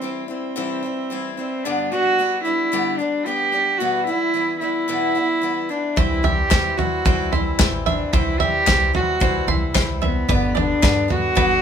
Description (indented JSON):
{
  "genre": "indie folk with a building arrangement",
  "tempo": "111 BPM",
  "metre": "4/4",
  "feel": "straight",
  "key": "unclear",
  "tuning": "A4 = 440 Hz",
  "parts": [
    { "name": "dark cello", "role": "melody", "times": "0.0-11.6 s", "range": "B3 to G4", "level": "-21 LUFS", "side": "right 1 dB", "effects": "none" },
    { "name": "picked old ladder-braced acoustic guitar", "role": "accompaniment", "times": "0.0-11.6 s", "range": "E2 to G4", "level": "-27 LUFS", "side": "left 5 dB", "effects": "none" },
    { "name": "hand-pumped harmonium", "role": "sustained chords", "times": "6.0-11.6 s", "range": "D3 to F#5", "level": "-34 LUFS", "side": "left 2 dB", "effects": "none" },
    { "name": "bluegrass banjo", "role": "arpeggios", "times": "6.0-11.6 s", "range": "B4 to C6", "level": "-27 LUFS", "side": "right 5 dB", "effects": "none" },
    { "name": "upright bass", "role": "bass", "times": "6.0-11.6 s", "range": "G1 to C3", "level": "-26 LUFS", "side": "equal", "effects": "none" },
    { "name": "loose indie drum kit", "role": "drums", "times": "6.0-11.5 s", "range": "kick drum, snare drum, toms", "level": "-20 LUFS", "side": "equal", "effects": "none" },
    { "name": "group handclap", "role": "percussion", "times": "6.5-11.0 s", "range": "none", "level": "-26 LUFS", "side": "left 7 dB", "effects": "none" }
  ],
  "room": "moderate studio reverb, RT60 0.6 s",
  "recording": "band playing live in one room",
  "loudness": "-18 LUFS",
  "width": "side -8 dB against mid",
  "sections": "0.0-11.6 A section",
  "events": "none",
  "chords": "0.0 C; 1.6 G; 3.8 Em; 6.0 C; 10.3 G"
}